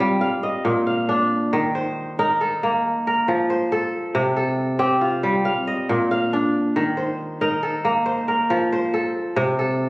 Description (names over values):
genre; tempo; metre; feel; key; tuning
west african traditional; 92 BPM (dotted quarters); 12/8; straight; unclear; A4 = 439 Hz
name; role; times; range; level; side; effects
kora; solo; 0.0-9.9 s; Bb2 to F5; -19 LUFS; equal; none
room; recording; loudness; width
wet recital hall reverb, RT60 1.7 s; recorded on a phone in the room, studio reverb; -19 LUFS; side -22 dB against mid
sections
0.0-9.4 A section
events
none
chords
0.2 Bb; 1.5 Eb5; 2.8 F; 4.2 C5; 5.5 Bb; 6.8 Eb5; 8.1 F; 9.4 F/C (rootless)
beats
0.22 0.88 | 1.53 2.19 2.84 3.50 | 4.15 4.80 5.46 6.11 | 6.76 7.42 8.07 8.72 | 9.37